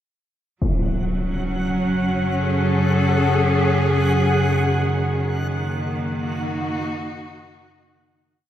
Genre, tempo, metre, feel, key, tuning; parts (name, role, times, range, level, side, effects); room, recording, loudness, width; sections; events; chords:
dark ambient drone; 62 BPM; 4/4; straight; A4 = 440 Hz
rich studio cello section; sustained chords; 0.6-8.4 s; D#3 to A4; -22 LUFS; equal
deep rumbling drone; drone; 1.3-8.5 s; F#2 to C#3; -22 LUFS; equal; built-in reverb
impact; percussion; 0.6-0.8 s; -24 LUFS; equal; low-pass filter on sfx
backwards swelling texture; texture; 1.0-8.4 s; F#5; -29 LUFS; left 3 dB; built-in reverb
wet plate reverb, RT60 3.6 s; dreamy mix soaked in reverb; -18 LUFS; side -11 dB against mid
0.6-8.4 A section
fade-out 4.5-8.4
0.6 F#m; 4.5 D#m